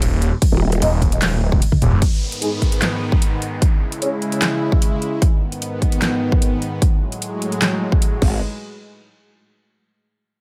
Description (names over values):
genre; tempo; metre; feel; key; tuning
heavy wobble dubstep; 150 BPM; 4/4; half-time; G# phrygian; A4 = 440 Hz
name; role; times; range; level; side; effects
snarling distorted saw bass; bass; 0.0-2.0 s; D#1; -20 LUFS; equal; distortion, overdrive
big-room dance drum kit; drums; 0.0-8.3 s; crash cymbal, handclaps, hi-hat, snare drum, toms; -25 LUFS; equal; overdrive
electronic kick drum; drums; 0.4-8.3 s; none; -19 LUFS; equal; overdrive
growl bass; bass; 0.5-0.8, 8.2-8.4 s; D#1 to G#1; -20 LUFS; equal; chorus, overdrive
dark brass ensemble; stabs; 0.8-4.1 s; G#3 to D#5; -27 LUFS; equal; delay
supersaw pad; sustained chords; 2.3-8.4 s; G#2 to E4; -26 LUFS; equal; phaser, sidechain pumping
downlifter; sound effects; 2.0-5.2 s; none; -35 LUFS; equal; none
room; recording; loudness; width
digital ambience; none; -18 LUFS; mono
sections
0.0-2.0 A section; 2.0-8.4 B section; 8.4-10.0 C section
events
drop 0.0-2.0; drum fill 1.7-2.0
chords
0.0 N.C.; 2.0 G#m; 3.6 C#m; 5.2 G#m; 6.8 F#madd9; 8.2 G#m; 8.4 N.C.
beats
0.02 | 0.42 0.82 1.22 1.62 | 2.02 2.42 2.82 3.22 | 3.62 4.02 4.42 4.82 | 5.22 5.62 6.02 6.42 | 6.82 7.22 7.62 8.02